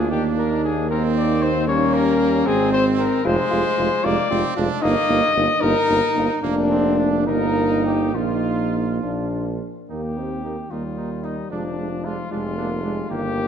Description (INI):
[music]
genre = classical, brass quintet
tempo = 68-77 BPM (dotted quarters)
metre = 6/8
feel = rubato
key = Eb major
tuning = A4 = 440 Hz
[part]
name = warm cornet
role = melody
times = 0.0-13.5 s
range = D4 to Eb5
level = -23 LUFS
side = left 5 dB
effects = none
[part]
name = clear trumpet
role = second line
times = 0.0-13.5 s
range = Ab3 to F4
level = -29 LUFS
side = right 6 dB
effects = none
[part]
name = mellow euphonium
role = accompaniment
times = 0.0-13.5 s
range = Eb3 to Bb3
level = -26 LUFS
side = right 6 dB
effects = none
[part]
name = warm French horn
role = accompaniment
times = 0.0-13.5 s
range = F3 to F4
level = -24 LUFS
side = left 3 dB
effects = none
[part]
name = clear tuba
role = bass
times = 0.0-13.5 s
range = F1 to Eb2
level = -25 LUFS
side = right 3 dB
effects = none
[sound]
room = moderate scoring stage reverb, RT60 1.7 s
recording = dark, warm production, nothing above 10.4 kHz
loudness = -18 LUFS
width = side -8 dB against mid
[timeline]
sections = 0.0-9.9 A section; 9.9-13.5 B section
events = none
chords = 0.1 Eb5; 1.7 Eb7; 2.5 Ab; 3.2 Fm; 4.8 Eb/G; 6.4 Bb/F; 7.3 Eb/G; 8.1 Bbsus4; 9.0 Bb; 9.9 Eb; 11.5 Ddim/F